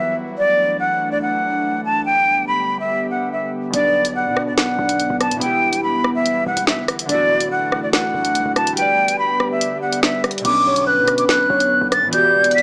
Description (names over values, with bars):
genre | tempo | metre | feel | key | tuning
hip hop, drill | 143 BPM | 4/4 | half-time | B minor | A4 = 440 Hz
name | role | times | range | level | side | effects
jazz flute | melody | 0.0-12.6 s | D5 to B6 | -20 LUFS | equal | none
airy breathy pad | sustained chords | 0.0-12.6 s | D3 to G4 | -29 LUFS | equal | chorus
glassy digital keys | accompaniment | 3.7-12.6 s | B2 to D5 | -27 LUFS | equal | chorus
hard-hitting 808-style bass | bass | 3.7-12.6 s | D1 to B2 | -35 LUFS | equal | none
drill drum kit | drums | 3.7-12.6 s | crash cymbal, hi-hat, rim click, snare drum | -23 LUFS | equal | none
breathy flute-like synth lead | second line | 10.7-12.6 s | B4 to D5 | -22 LUFS | equal | chorus
room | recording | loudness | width
light reverb, digital ambience | small speaker sound | -18 LUFS | mono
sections
0.0-10.4 A section; 10.4-12.6 B section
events
break 0.0-3.7; kick muted 8.8-10.4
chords
0.4 Dadd9; 2.1 G; 3.7 Bm; 5.4 Em; 7.1 Dadd9; 8.8 G; 10.4 Bmadd9